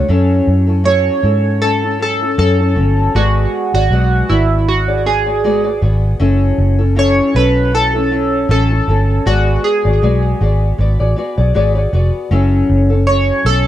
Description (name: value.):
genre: indie pop, bedroom pop.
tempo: 79 BPM.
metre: 4/4.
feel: swing 55% on 16ths.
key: F# minor.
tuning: A4 = 439 Hz.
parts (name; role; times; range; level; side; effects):
nylon-string guitar; accompaniment; 0.0-13.7 s; F#3 to D5; -18 LUFS; left 3 dB; analog chorus, vibrato effect.
vintage muted fingered electric bass; bass; 0.1-13.7 s; E#1 to G#2; -14 LUFS; equal; none.
chorused retro synth keys; melody; 0.9-13.7 s; E4 to C#5; -16 LUFS; right 2 dB; lush chorus, tape echo.
room: moderate studio reverb, RT60 0.5 s.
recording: dark, warm production.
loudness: -11 LUFS.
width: side -12 dB against mid.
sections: 0.1-13.7 A section.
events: none.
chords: 0.1 F#m7; 3.1 G#m7b5; 6.2 F#m7; 9.3 G#m7b5; 12.3 F#m7.